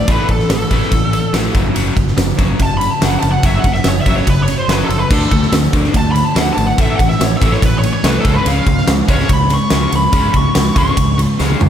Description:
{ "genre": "classic rock", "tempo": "143 BPM", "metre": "4/4", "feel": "straight", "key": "F# minor", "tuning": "A4 = 441 Hz", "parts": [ { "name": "smooth overdriven lead guitar", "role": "melody", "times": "0.0-11.2 s", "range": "A4 to C#6", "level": "-19 LUFS", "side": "equal", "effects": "wah" }, { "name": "overdriven electric guitar", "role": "riff", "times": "0.0-11.7 s", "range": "F#2 to D4", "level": "-18 LUFS", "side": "left 1 dB", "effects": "none" }, { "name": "growling fingered electric bass", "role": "bass", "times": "0.1-11.7 s", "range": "F#1 to D2", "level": "-18 LUFS", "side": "equal", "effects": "overdrive" }, { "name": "big rock drum kit", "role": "drums", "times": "0.1-11.7 s", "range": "crash cymbal, kick drum, ride cymbal, snare drum, toms", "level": "-15 LUFS", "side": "equal", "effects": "none" }, { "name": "tambourine", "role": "percussion", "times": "0.1-11.7 s", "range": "none", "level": "-35 LUFS", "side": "left 7 dB", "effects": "none" } ], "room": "light reverb, small room ambience", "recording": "none", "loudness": "-11 LUFS", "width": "side -9 dB against mid", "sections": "0.0-11.7 A section", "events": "lead electric guitar solo 0.0-11.7; drum fill 11.4", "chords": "0.1 A5; 1.6 F#5; 5.1 D5; 6.8 A5; 8.3 C#5" }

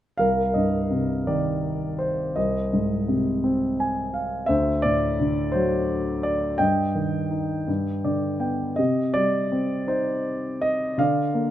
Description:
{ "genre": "classical, lyrical solo piano", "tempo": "55 BPM (dotted quarters)", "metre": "6/8", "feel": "rubato", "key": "C minor", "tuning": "A4 = 440 Hz", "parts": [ { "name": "warm concert grand piano", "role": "solo", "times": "0.2-11.5 s", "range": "C2 to Ab5", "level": "-21 LUFS", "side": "equal", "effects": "none" } ], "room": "light reverb", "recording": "close, detailed microphones", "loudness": "-22 LUFS", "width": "side -12 dB against mid", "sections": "0.2-11.5 A section", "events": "grand piano fill 3.4-4.5, 7.7-8.8", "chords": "0.2 Cm7; 2.4 Ab/C; 4.5 D7; 6.6 Eb/G; 7.7 G; 8.8 Cmadd9; 11.0 Bb/D" }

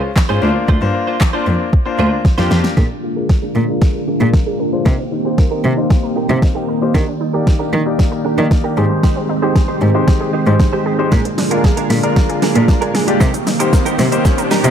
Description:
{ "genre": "dance-pop", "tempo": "115 BPM", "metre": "4/4", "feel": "straight", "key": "unclear", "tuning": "A4 = 438 Hz", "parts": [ { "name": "clear grand piano", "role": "accompaniment", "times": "0.0-14.7 s", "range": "Ab3 to Bb5", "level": "-21 LUFS", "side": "left 5 dB", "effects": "sidechain pumping, low-pass filter" }, { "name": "direct-recorded clean electric guitar", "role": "riff", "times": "0.0-14.7 s", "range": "D4 to C5", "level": "-24 LUFS", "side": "right 7 dB", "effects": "ensemble chorus, low-pass filter" }, { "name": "smooth R&B drum kit", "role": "drums", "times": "0.2-14.7 s", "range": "handclaps, hi-hat, kick drum, shaker, snare drum", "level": "-14 LUFS", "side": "equal", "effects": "overdrive" }, { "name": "warm cello", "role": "bass", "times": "0.3-14.7 s", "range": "D2 to Eb3", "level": "-16 LUFS", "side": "equal", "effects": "sidechain pumping" }, { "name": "string machine, full ensemble", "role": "sustained chords", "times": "2.8-14.7 s", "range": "D3 to D5", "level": "-19 LUFS", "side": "right 1 dB", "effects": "ensemble chorus, sidechain pumping, low-pass filter" }, { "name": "analog pluck", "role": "arpeggios", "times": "2.8-14.7 s", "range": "Ab3 to Bb4", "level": "-26 LUFS", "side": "right 2 dB", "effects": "chorus, sidechain pumping, low-pass filter, analog delay" }, { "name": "riser", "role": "sound effects", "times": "12.7-14.7 s", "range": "none", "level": "-26 LUFS", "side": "right 2 dB", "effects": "none" } ], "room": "light reverb", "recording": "none", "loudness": "-12 LUFS", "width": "side -8 dB against mid", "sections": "0.0-2.8 A section; 2.8-14.7 B section", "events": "drum fill 2.3-2.8, 2.8-14.7; build-up 2.8-14.7; filter sweep 2.8-14.7; grand piano fill 14.3-14.7", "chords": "0.4 Bbadd9/D; 2.8 Bb7; 4.9 Cm7; 6.9 Ebmaj7; 8.8 Abmaj7; 11.1 Bb7; 13.2 Cm7" }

